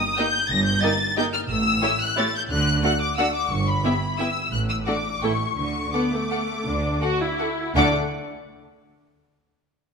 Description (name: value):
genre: classical, orchestral ballroom waltz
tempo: 156-198 BPM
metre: 3/4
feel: rubato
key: D major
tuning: A4 = 440 Hz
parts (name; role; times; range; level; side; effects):
- rich studio violin section; melody; 0.0-8.0 s; B5 to Bb6; -25 LUFS; left 3 dB; none
- rich studio violin section; second line; 0.2-8.0 s; F#4 to G5; -28 LUFS; left 2 dB; none
- rich studio viola section; accompaniment; 0.2-7.9 s; A3 to F#4; -27 LUFS; right 1 dB; none
- rich studio cello section; bass; 0.5-7.9 s; G2 to D3; -29 LUFS; right 2 dB; none
- rich studio double bass section; bass; 0.5-7.9 s; G1 to D2; -29 LUFS; right 2 dB; none
room: moderate scoring stage reverb, RT60 1.7 s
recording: minimal, uncompressed stereo recording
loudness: -20 LUFS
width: side -5 dB against mid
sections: 0.0-7.8 A section; 7.8-8.8 B section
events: none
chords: 0.0 Eb; 1.5 A7(no3); 2.5 D; 3.5 Em/G; 4.5 D/A; 5.2 A7; 5.6 D5